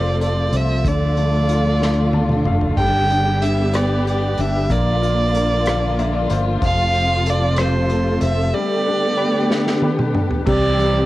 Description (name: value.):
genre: six-eight pop ballad.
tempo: 62 BPM (dotted quarters).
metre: 6/8.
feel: straight.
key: unclear.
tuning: A4 = 442 Hz.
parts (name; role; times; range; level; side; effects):
clear violin; melody; 0.0-11.1 s; C5 to G5; -22 LUFS; right 2 dB; plate reverb, analog delay.
bright upright piano; accompaniment; 0.0-11.1 s; C3 to A5; -26 LUFS; left 6 dB; cassette tape, plate reverb.
dark studio string section; sustained chords; 0.0-11.1 s; C3 to G4; -21 LUFS; equal; cassette tape, plate reverb.
fingered electric bass; bass; 0.0-11.1 s; F1 to D2; -20 LUFS; equal; none.
unplugged drum kit; drums; 0.2-10.9 s; crash cymbal, hi-hat, kick drum, rim click, snare drum, toms; -24 LUFS; equal; cassette tape.
fingerpicked plugged-in steel-string acoustic guitar; arpeggios; 10.5-11.1 s; G3 to G4; -25 LUFS; right 7 dB; cassette tape, plate reverb.
room: moderate small room reverb, RT60 0.5 s.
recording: home recording on cassette.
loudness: -16 LUFS.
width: side -16 dB against mid.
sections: 0.0-10.5 A section.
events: drum fill 1.8-2.8, 9.5-10.5; upright piano fill 1.8-2.8, 5.7-6.6.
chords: 0.0 F; 0.8 Dm; 2.8 G; 4.7 Bb; 6.6 F; 8.5 Gadd9; 10.5 C.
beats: | 0.85 1.81 | 2.78 3.75 | 4.71 5.67 | 6.63 7.58 | 8.54 9.50 | 10.47.